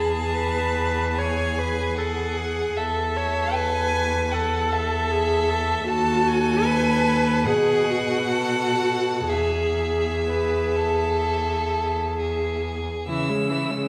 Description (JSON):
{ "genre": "classical, slow romantic movement for string quartet", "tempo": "61-78 BPM", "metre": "4/4", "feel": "rubato", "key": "E major", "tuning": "A4 = 442 Hz", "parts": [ { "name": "rich violin", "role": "melody", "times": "0.0-13.9 s", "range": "E5 to E6", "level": "-32 LUFS", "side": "equal", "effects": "none" }, { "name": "clear violin", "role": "second line", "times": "0.0-13.9 s", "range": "C#4 to B4", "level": "-30 LUFS", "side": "equal", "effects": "none" }, { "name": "clear viola", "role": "accompaniment", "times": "0.0-13.9 s", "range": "E3 to C#5", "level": "-27 LUFS", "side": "equal", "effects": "none" }, { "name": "rich cello", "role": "bass", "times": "0.0-13.8 s", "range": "D#2 to C#3", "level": "-29 LUFS", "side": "equal", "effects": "none" } ], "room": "wet concert hall reverb, RT60 2.0 s", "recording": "recorded in a church or concert hall", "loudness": "-23 LUFS", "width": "mono", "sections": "0.0-13.1 A section", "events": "none", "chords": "0.0 E; 5.9 B7/D#; 7.5 G#m7/B; 8.3 B5; 9.3 E; 13.1 C#m" }